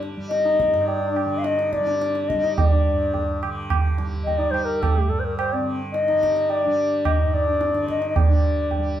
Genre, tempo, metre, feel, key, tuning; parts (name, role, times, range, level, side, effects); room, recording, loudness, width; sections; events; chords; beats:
indian classical, Hindustani; 107 BPM; 5/4; straight; A4 = 439 Hz
warm bass clarinet; second line; 0.0-9.0 s; G3 to Eb4; -29 LUFS; left 2 dB
tanpura; drone; 0.0-9.0 s; G2 to G3; -31 LUFS; equal
tabla; percussion; 0.0-8.9 s; -23 LUFS; right 3 dB
mellow bansuri; melody; 0.3-9.0 s; G4 to F5; -22 LUFS; left 2 dB
wet large studio reverb, RT60 1.1 s; band playing live in one room; -19 LUFS; side -11 dB against mid
0.0-9.0 A section
speeding up 0.0-9.0
0.31 0.88 1.45 2.01 | 2.57 3.14 3.70 4.26 4.82 | 5.38 5.93 6.49 7.04 7.60 | 8.15 8.70